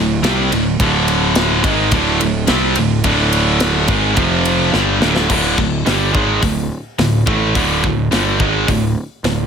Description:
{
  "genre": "heavy metal",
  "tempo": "107 BPM",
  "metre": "4/4",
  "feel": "straight",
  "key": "D phrygian",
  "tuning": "A4 = 439 Hz",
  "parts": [
    { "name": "heavy high-gain guitar", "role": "riff", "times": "0.0-9.5 s", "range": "D2 to C4", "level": "-17 LUFS", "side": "right 11 dB", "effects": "distortion" },
    { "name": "scooped high-gain guitar", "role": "riff", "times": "0.0-9.5 s", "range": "D2 to C4", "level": "-18 LUFS", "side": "left 12 dB", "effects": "distortion" },
    { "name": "fuzz picked electric bass", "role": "bass", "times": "0.0-9.5 s", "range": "D1 to C2", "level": "-20 LUFS", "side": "left 1 dB", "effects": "overdrive" },
    { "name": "tight metal drum kit", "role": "drums", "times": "0.2-9.4 s", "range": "crash cymbal, hi-hat, kick drum, ride cymbal, snare drum", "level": "-20 LUFS", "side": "left 1 dB", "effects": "none" }
  ],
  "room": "light reverb",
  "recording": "none",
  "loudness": "-13 LUFS",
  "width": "side -7 dB against mid",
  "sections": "0.0-5.3 A section; 5.3-9.5 B section",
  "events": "drum fill 4.7-5.3",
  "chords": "0.0 D5; 4.2 F5; 4.7 D5"
}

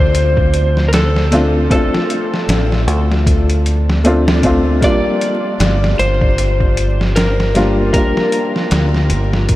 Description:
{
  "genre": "trip hop",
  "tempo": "77 BPM",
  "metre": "4/4",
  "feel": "swing 57% on 16ths",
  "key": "D minor",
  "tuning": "A4 = 440 Hz",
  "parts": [
    { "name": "electric slide guitar", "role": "melody", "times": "0.0-9.5 s", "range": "A4 to D5", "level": "-20 LUFS", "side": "left 1 dB", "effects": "vintage 12-bit sampler grit, tape echo" },
    { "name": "felt-muted upright piano", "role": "accompaniment", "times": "0.0-9.6 s", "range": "G3 to F4", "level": "-18 LUFS", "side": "left 1 dB", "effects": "harmonic tremolo, tape echo" },
    { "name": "deep dub fingered electric bass", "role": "bass", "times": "0.0-9.6 s", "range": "G1 to D2", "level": "-15 LUFS", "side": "equal", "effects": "none" },
    { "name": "trip hop sampler-style drum kit", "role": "drums", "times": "0.1-9.6 s", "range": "hi-hat, kick drum, snare drum", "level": "-18 LUFS", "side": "equal", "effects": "small room ambience" }
  ],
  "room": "moderate huge ambient reverb, RT60 7.9 s",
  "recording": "dreamy mix soaked in reverb, vinyl crackle",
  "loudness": "-12 LUFS",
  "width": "side -16 dB against mid",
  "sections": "0.0-9.6 A section",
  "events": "none",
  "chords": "0.0 Dm7; 4.8 Gm7"
}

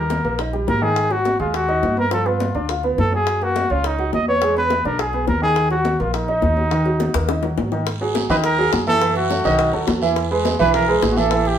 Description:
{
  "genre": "Afro-Cuban jazz",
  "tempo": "209 BPM",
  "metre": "4/4",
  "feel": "straight",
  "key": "Eb minor, G# minor from 7.9 s",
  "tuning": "A4 = 445 Hz",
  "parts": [
    { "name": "warm trumpet", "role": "melody", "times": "0.0-11.6 s", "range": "Eb4 to Eb5", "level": "-21 LUFS", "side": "equal", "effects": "none" },
    { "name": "warm grand piano", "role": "accompaniment", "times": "0.0-11.5 s", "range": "Eb3 to G#5", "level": "-21 LUFS", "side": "right 2 dB", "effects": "none" },
    { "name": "upright bass", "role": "bass", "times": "0.0-11.6 s", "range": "Ab1 to G2", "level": "-24 LUFS", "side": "equal", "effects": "none" },
    { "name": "bongos", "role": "percussion", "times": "0.1-11.6 s", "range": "none", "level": "-27 LUFS", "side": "left 7 dB", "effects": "none" },
    { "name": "congas", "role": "percussion", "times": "0.1-11.6 s", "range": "none", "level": "-27 LUFS", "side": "left 2 dB", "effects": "none" },
    { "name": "guiro", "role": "percussion", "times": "7.9-11.6 s", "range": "none", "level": "-33 LUFS", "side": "right 6 dB", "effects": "none" }
  ],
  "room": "wet studio reverb, RT60 0.6 s",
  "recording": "band playing live in one room",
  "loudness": "-16 LUFS",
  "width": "side -9 dB against mid",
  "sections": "0.0-7.9 A section; 7.9-11.6 B section",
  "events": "drum fill 7.1-7.9",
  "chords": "0.0 Eb; 1.0 Abm7; 2.1 G7; 3.3 Gb6; 4.4 E7; 5.6 Ebm; 7.9 G#5; 9.0 F#m7; 9.6 B7; 10.2 E"
}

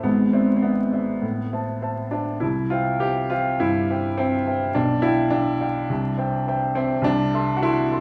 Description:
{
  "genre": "classical, romantic character piece for solo piano",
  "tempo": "103 BPM",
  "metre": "4/4",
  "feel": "rubato",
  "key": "unclear",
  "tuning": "A4 = 441 Hz",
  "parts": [
    { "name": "warm baby grand piano", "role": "solo", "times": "0.0-8.0 s", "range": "G#1 to C6", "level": "-22 LUFS", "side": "equal", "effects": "none" }
  ],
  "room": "wet recital hall reverb, RT60 1.4 s",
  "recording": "vinyl crackle, studio ambience",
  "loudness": "-22 LUFS",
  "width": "mono",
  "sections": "0.0-8.0 A section",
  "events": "none",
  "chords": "0.1 E7/G#; 1.2 Am; 2.4 C; 4.8 G7/B; 5.9 C; 7.0 Am/C"
}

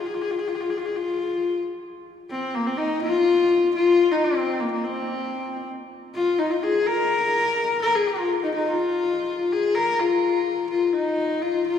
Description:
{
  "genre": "mongolian traditional",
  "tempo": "125 BPM",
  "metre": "4/4",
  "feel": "straight",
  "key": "F yu mode",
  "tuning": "A4 = 440 Hz",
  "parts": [
    { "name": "clear horsehead fiddle", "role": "solo", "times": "0.0-11.8 s", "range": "Bb3 to Bb4", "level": "-21 LUFS", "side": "left 3 dB", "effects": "none" }
  ],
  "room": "wet church reverb, RT60 3.7 s",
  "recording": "recorded in a church or concert hall, studio reverb",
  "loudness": "-20 LUFS",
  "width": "side -8 dB against mid",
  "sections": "0.0-2.1 A section; 2.1-11.8 B section",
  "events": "none",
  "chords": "none"
}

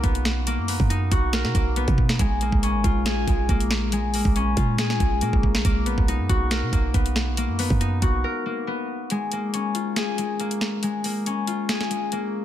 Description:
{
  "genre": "hip hop, trap",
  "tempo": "139 BPM",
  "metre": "4/4",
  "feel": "half-time",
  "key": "Bb phrygian",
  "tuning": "A4 = 439 Hz",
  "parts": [
    { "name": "concert harp", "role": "accompaniment", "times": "0.0-12.4 s", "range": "Ab3 to A#4", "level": "-25 LUFS", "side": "left 3 dB", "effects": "low-pass filter" },
    { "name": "clean 808-style bass", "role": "bass", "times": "0.0-8.2 s", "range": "Ab1 to B2", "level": "-24 LUFS", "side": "right 1 dB", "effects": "none" },
    { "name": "trap drum kit", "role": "drums", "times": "0.0-12.2 s", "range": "hi-hat, kick drum, snare drum", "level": "-24 LUFS", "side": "right 1 dB", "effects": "none" }
  ],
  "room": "little or no reverb",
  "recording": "none",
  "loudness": "-21 LUFS",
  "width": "side -11 dB against mid",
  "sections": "0.0-9.1 A section; 9.1-12.4 B section",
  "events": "break 8.2-9.1, 9.1-12.4",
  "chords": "0.0 Bmaj7; 2.2 Bbm7; 5.6 Bmaj7; 9.1 Bbm7"
}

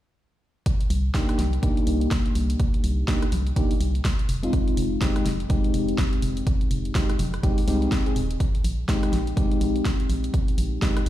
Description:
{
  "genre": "deep house",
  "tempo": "124 BPM",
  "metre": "4/4",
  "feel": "swing 60% on 16ths",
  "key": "C minor",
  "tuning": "A4 = 439 Hz",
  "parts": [
    { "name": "deep house drum kit", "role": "drums", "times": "0.7-11.1 s", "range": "hi-hat, rim click, snare drum", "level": "-33 LUFS", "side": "equal", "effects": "studio reverb" },
    { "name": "electronic kick drum", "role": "drums", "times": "0.7-10.9 s", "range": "none", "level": "-23 LUFS", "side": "equal", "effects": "studio reverb" },
    { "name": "organ-like FM bass", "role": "bass", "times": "0.9-11.1 s", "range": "Eb1 to C2", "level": "-24 LUFS", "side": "equal", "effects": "sidechain pumping" },
    { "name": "mellow FM electric piano", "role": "stabs", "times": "1.1-11.0 s", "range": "Ab3 to Ab4", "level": "-26 LUFS", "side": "left 1 dB", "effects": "chorus, sidechain pumping, tape echo" },
    { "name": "congas", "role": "percussion", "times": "1.4-11.1 s", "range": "none", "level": "-35 LUFS", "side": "left 2 dB", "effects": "none" }
  ],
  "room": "light reverb",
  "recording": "played on a big sound system in a bare room, large studio reverb",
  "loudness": "-21 LUFS",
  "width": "side -13 dB against mid",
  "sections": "0.7-11.1 A section",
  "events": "none",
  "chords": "0.7 Cm7; 4.3 Fm9; 8.4 Bb13sus4"
}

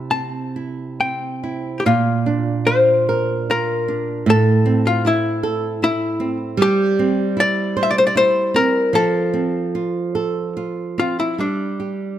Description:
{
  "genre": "celtic folk, Celtic slow air",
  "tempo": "65-79 BPM",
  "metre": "3/4",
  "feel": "rubato",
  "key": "unclear",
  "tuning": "A4 = 440 Hz",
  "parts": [
    { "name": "archtop guitar, miked and amplified", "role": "melody", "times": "0.0-12.2 s", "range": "D4 to A5", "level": "-18 LUFS", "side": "left 2 dB", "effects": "none" },
    { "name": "flamenco guitar", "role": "accompaniment", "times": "0.0-12.2 s", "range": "A2 to C5", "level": "-20 LUFS", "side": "right 3 dB", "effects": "none" }
  ],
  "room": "light reverb",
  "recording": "close, detailed microphones",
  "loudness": "-16 LUFS",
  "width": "side -11 dB against mid",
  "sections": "0.0-1.9 A section; 1.9-11.4 B section",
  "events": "none",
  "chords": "0.0 C6; 1.9 Bb; 4.3 Am; 6.6 C/G; 8.9 F; 11.4 G5"
}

